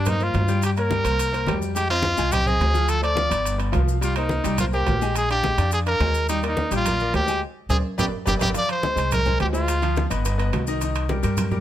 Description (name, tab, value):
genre	latin, salsa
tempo	212 BPM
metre	4/4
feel	straight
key	C minor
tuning	A4 = 439 Hz
part	brilliant trumpet	melody	0.0-10.1 s	D4 to D5	-23 LUFS	equal	none
part	bright grand piano	accompaniment	0.0-11.6 s	D#3 to Ab5	-28 LUFS	left 3 dB	none
part	upright bass	bass	0.0-11.6 s	G1 to G2	-24 LUFS	equal	none
part	congas	percussion	0.1-11.6 s	none	-29 LUFS	equal	none
part	maracas	percussion	0.1-11.6 s	none	-36 LUFS	left 5 dB	none
part	timbales	percussion	0.1-11.5 s	none	-32 LUFS	right 7 dB	none
room	little or no reverb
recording	close, detailed microphones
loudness	-20 LUFS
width	side -12 dB against mid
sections	0.0-8.6 A section; 8.6-11.6 B section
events	drum fill 7.4-8.6; band accent 7.4-8.6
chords	0.0 C5; 0.6 Gdim; 1.2 C5; 1.8 Fm7; 2.9 Dm7; 3.5 G7; 4.0 Cm7; 5.2 Bb7; 6.3 Ebmaj7; 7.4 Ab; 8.0 G; 8.6 Fmadd11; 9.7 Dm7b5; 10.2 Gaug; 10.8 Cm7